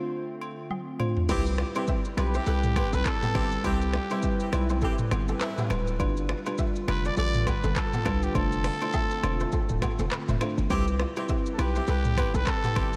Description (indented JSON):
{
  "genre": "afrobeats",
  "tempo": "102 BPM",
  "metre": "4/4",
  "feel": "swing 58% on 16ths",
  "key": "C major",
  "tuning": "A4 = 441 Hz",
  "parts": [
    { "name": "growling trumpet", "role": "melody", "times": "0.0-13.0 s", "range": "G4 to D5", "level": "-35 LUFS", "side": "equal", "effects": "low-pass filter, analog delay" },
    { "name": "soft round pluck", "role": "accompaniment", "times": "0.0-13.0 s", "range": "G3 to C5", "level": "-36 LUFS", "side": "equal", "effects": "chorus, low-pass filter" },
    { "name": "hollow soft pad", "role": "sustained chords", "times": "0.0-13.0 s", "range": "D3 to B4", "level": "-38 LUFS", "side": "equal", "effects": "chorus, low-pass filter" },
    { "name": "agogo bells and woodblock", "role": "percussion", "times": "0.4-12.9 s", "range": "none", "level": "-42 LUFS", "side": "equal", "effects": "none" },
    { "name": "afro-pop drum kit", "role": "drums", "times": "0.7-13.0 s", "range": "crash cymbal, finger snaps, handclaps, hi-hat, kick drum, rim click, shaker, toms", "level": "-32 LUFS", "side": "equal", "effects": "none" },
    { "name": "warm horn section", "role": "second line", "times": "1.3-5.8, 10.7-12.9 s", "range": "E3 to B4", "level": "-39 LUFS", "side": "equal", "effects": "analog delay" },
    { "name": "hard-hitting 808-style bass", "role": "bass", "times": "1.3-13.0 s", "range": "D1 to C2", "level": "-30 LUFS", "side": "equal", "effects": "none" },
    { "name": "kora", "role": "riff", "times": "1.6-12.9 s", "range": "B3 to E5", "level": "-40 LUFS", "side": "equal", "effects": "analog delay" }
  ],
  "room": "moderate lush hall reverb, RT60 2.4 s",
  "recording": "dreamy mix soaked in reverb",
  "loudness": "-27 LUFS",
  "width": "mono",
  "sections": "0.0-1.3 A section; 1.3-13.0 B section",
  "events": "filter sweep 0.0-1.3; drum fill 0.7-1.3",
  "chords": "0.0 F6; 1.3 Cmaj7; 6.0 G7; 8.3 F6",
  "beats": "0.11 0.70 | 1.29 1.88 2.47 3.06 | 3.64 4.23 4.82 5.41 | 6.00 6.58 7.17 7.76 | 8.35 8.94 9.53 10.11 | 10.70 11.29 11.88 12.47"
}